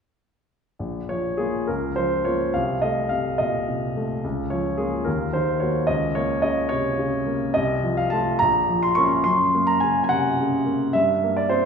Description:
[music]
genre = classical, romantic character piece for solo piano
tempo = 67-74 BPM (dotted quarters)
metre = 6/8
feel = rubato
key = Bb minor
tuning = A4 = 440 Hz
[part]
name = warm baby grand piano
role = solo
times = 0.8-11.7 s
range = Bb1 to Db6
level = -20 LUFS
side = equal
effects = none
[sound]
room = wet recital hall reverb, RT60 1.4 s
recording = recorded in a church or concert hall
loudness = -20 LUFS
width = side -6 dB against mid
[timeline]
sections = 0.8-11.7 A section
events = none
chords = 0.8 Bb5; 1.7 Bbm/Db; 2.5 Cm6; 4.2 Bbm/Db; 5.1 Ebm; 5.9 Bbm/Db; 7.5 F7/C; 8.4 Bbm; 9.2 Gb; 10.9 C7/G

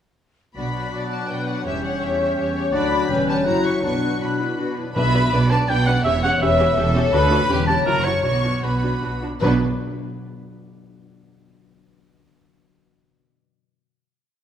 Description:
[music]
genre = classical, dramatic, fast romantic movement for symphony orchestra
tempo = 151-168 BPM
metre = 3/4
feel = straight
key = B minor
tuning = A4 = 440 Hz
[part]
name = clear symphonic violin section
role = melody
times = 0.6-9.6 s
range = F#4 to C#6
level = -30 LUFS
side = left 4 dB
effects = none
[part]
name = bright clarinet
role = second line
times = 0.6-4.9 s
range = C#4 to F#4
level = -29 LUFS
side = left 1 dB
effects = none
[part]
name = mellow large flute ensemble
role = second line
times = 0.6-4.8 s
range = F#6 to G6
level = -32 LUFS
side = left 2 dB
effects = none
[part]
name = warm symphonic violin section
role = second line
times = 0.6-9.6 s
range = D4 to C#6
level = -28 LUFS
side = left 1 dB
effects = none
[part]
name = mellow French horn section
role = sustained chords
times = 0.6-4.8 s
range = F#3 to E4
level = -28 LUFS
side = left 4 dB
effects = none
[part]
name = concert harp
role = arpeggios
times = 0.6-10.6 s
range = F#2 to G5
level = -26 LUFS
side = left 4 dB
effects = none
[part]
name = rich symphonic cello section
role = bass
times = 0.6-9.6 s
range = D2 to B2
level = -25 LUFS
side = right 2 dB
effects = none
[part]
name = warm symphonic double bass section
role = bass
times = 0.6-9.6 s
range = E1 to D2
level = -26 LUFS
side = right 2 dB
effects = none
[part]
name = warm symphonic viola section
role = accompaniment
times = 0.9-9.6 s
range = F#3 to D5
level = -28 LUFS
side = right 1 dB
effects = none
[part]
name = warm cor anglais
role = second line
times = 5.0-9.6 s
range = A#4 to A5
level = -23 LUFS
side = right 2 dB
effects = none
[part]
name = timpani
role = percussion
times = 5.0-5.5, 9.4-9.6 s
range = B2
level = -28 LUFS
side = right 1 dB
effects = none
[sound]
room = moderate scoring stage reverb, RT60 1.9 s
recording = none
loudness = -18 LUFS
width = side -9 dB against mid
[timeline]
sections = 0.6-5.0 A section; 5.0-9.4 A section; 9.4-10.6 final chord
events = slowing down 6.6-9.4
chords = 0.6 Bm; 1.7 C#dim/E; 2.7 Bm/D; 3.1 C#m7b5/E; 3.5 F#7; 3.8 Bm; 6.1 C#dim/E; 7.1 Bm/D; 7.5 C#m7b5/E; 7.9 F#7; 8.2 Bm

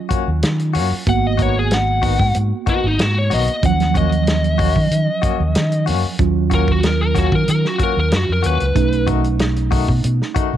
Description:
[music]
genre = straight-eighth soul blues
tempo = 94 BPM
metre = 4/4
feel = straight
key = Eb minor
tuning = A4 = 440 Hz
[part]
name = tine electric piano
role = accompaniment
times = 0.0-10.6 s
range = F3 to Gb4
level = -23 LUFS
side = right 14 dB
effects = slow stereo tremolo
[part]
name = direct-recorded clean electric guitar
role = stabs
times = 0.1-10.6 s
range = Eb3 to Gb4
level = -25 LUFS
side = left 12 dB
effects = tremolo
[part]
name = fingered electric bass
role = bass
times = 0.1-10.6 s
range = Ab1 to Eb3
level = -18 LUFS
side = equal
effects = none
[part]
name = warm soul drum kit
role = drums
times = 0.1-10.5 s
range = hi-hat, kick drum, snare drum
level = -21 LUFS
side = equal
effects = none
[part]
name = biting lead guitar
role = melody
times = 1.1-9.1 s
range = Eb4 to Gb5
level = -21 LUFS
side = left 1 dB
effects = overdrive
[sound]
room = light reverb, studio ambience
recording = 1960s-style stereo with parts hard left and right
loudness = -15 LUFS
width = side -11 dB against mid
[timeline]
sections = 0.0-10.6 A section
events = none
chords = 0.0 Ebm7; 1.1 Abm7; 3.6 Ebm7; 8.8 B7

